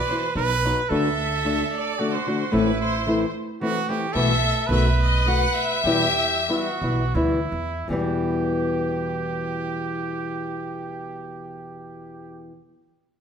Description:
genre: mexican folk, mariachi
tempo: 77-112 BPM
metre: 3/4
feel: straight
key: E minor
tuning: A4 = 440 Hz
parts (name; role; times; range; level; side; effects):
- clear chamber violin section; melody; 0.0-7.2 s; B4 to F#5; -25 LUFS; left 2 dB; none
- bright trumpet; second line; 0.0-12.5 s; E4 to B4; -28 LUFS; right 5 dB; none
- nylon-string guitar; accompaniment; 0.1-12.6 s; E2 to F#4; -25 LUFS; left 2 dB; none
- upright bass; bass; 0.4-12.5 s; A1 to E2; -26 LUFS; right 1 dB; none
room: wet recital hall reverb, RT60 1.3 s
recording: minimal, uncompressed stereo recording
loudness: -21 LUFS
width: side -7 dB against mid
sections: 0.0-7.9 A section; 7.9-12.5 B section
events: slowing down 4.2-7.9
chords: 0.4 B; 0.9 D; 2.5 Am; 4.2 B7sus4; 4.7 B7; 5.9 Em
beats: 0.36 | 0.91 1.45 1.99 | 2.53 3.07 3.61 | 4.15 4.70 5.26 | 5.85 6.48 7.15 | 7.89 8.66 9.43 | 10.19 10.95 11.72

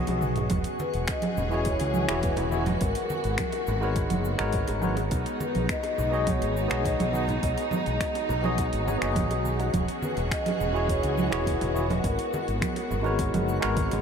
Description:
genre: sunset chillout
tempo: 104 BPM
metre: 4/4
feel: straight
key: B major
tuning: A4 = 440 Hz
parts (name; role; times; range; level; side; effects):
- barky tine electric piano; accompaniment; 0.0-14.0 s; E3 to G#5; -31 LUFS; left 1 dB; overdrive, auto-pan, diffuse ambient delay
- mellow fretless electric bass; bass; 0.0-14.0 s; E1 to C#2; -29 LUFS; equal; lush chorus
- twinkling granular texture; texture; 0.0-14.0 s; F#4 to F#5; -40 LUFS; equal; built-in reverb
- smooth R&B drum kit; drums; 0.1-14.0 s; cabasa, congas, finger snaps, hi-hat, toms; -32 LUFS; right 3 dB; overdrive
- bongos and congas; percussion; 0.1-14.0 s; none; -38 LUFS; right 1 dB; none
- warm symphonic string section; sustained chords; 0.5-14.0 s; E3 to G#4; -33 LUFS; equal; none
- electronic kick drum; drums; 0.5-13.9 s; none; -31 LUFS; equal; overdrive
- vibraphone with soft mallets; melody; 0.8-13.2 s; A#4 to D#5; -32 LUFS; left 1 dB; tape echo
room: moderate huge ambient reverb, RT60 7.9 s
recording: dreamy mix soaked in reverb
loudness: -24 LUFS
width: side -7 dB against mid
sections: 0.0-14.0 A section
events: drum fill 0.0-0.5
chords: 0.0 B6; 0.5 E69; 2.8 G#m11; 5.1 B6; 9.7 E69; 12.0 G#m11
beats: | 0.50 1.08 1.66 2.23 | 2.81 3.39 3.97 4.54 | 5.12 5.70 6.27 6.85 | 7.43 8.00 8.58 9.16 | 9.73 10.31 10.89 11.47 | 12.04 12.62 13.20 13.77

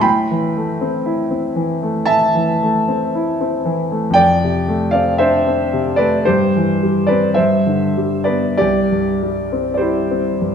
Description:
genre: classical, romantic nocturne for solo piano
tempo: 47-60 BPM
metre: 4/4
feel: rubato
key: C major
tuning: A4 = 440 Hz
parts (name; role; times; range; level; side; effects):
- clear concert grand piano; solo; 0.0-10.5 s; C2 to B5; -14 LUFS; equal; none
room: wet recital hall reverb, RT60 1.7 s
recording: minimal, uncompressed stereo recording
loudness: -14 LUFS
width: side -7 dB against mid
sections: 0.0-10.5 A section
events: none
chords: 0.0 Am; 4.2 Dm7/F; 6.3 C/G; 8.6 C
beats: | 0.04 1.05 2.10 3.15 | 4.17 5.20 6.26 7.37 | 8.59 9.82

